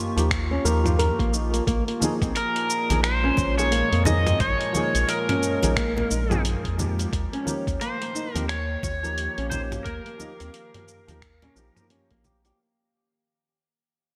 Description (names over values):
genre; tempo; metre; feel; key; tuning
organic downtempo; 88 BPM; 4/4; swing 60% on 16ths; unclear; A4 = 440 Hz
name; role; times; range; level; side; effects
felt-muted upright piano; accompaniment; 0.0-12.6 s; F3 to Ab4; -34 LUFS; equal; sidechain pumping, delay
warbly tape-like pad; sustained chords; 0.0-12.6 s; Bb2 to Db6; -36 LUFS; equal; chorus, built-in reverb, sidechain pumping
round analog bass; bass; 0.2-12.5 s; Bb1 to F2; -28 LUFS; equal; sidechain pumping
dusty soul sampler-style drum kit; drums; 0.2-12.6 s; finger snaps, hi-hat, shaker, toms; -32 LUFS; equal; overdrive, studio reverb, gated reverb
electronic kick drum; drums; 0.3-12.2 s; none; -31 LUFS; equal; overdrive, studio reverb
flamenco guitar; arpeggios; 0.5-12.6 s; Bb3 to Bb4; -32 LUFS; equal; vintage 12-bit sampler grit, delay
congas and bongos; percussion; 2.0-12.6 s; none; -34 LUFS; equal; none
overdriven slide guitar; melody; 2.4-11.9 s; Bb4 to Eb5; -29 LUFS; equal; delay
room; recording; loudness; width
moderate lush hall reverb, RT60 3.0 s; bright 1980s-style digital production; -24 LUFS; mono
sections
0.0-12.6 A section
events
fade-out 5.3-12.6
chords
0.0 Eb7; 1.7 Bbm7; 7.1 Eb7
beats
0.31 0.99 | 1.67 2.36 3.04 3.72 | 4.40 5.08 5.76 6.45 | 7.13 7.81 8.49 9.17 | 9.86 10.54 11.22 11.90